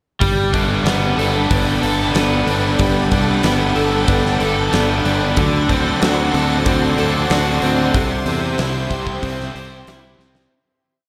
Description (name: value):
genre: rock, shoegaze and dream pop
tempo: 93 BPM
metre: 4/4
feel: straight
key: G major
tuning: A4 = 440 Hz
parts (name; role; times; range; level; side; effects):
- soft additive organ-like pad; sustained chords; 0.2-10.5 s; G4 to C6; -27 LUFS; equal; ensemble chorus, built-in reverb
- electric guitar through a small old amp; arpeggios; 0.2-10.5 s; F#3 to A4; -27 LUFS; equal; ensemble chorus, delay
- crunchy overdriven guitar; riff; 0.2-10.5 s; C3 to C5; -23 LUFS; equal; reverse reverb
- thick fuzz guitar; riff; 0.2-10.5 s; C3 to C5; -24 LUFS; equal; distortion, ensemble chorus
- fingered electric bass; bass; 0.2-10.5 s; G1 to E2; -24 LUFS; equal; none
- big rock drum kit; drums; 0.2-10.5 s; hi-hat, kick drum, snare drum; -25 LUFS; equal; none
room: moderate plate reverb, RT60 2.1 s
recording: dreamy mix soaked in reverb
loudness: -17 LUFS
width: mono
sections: 0.2-10.5 verse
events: fade-out 7.9-10.5; drum fill 10.2-10.5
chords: 0.2 Gadd9; 5.4 D7; 7.9 C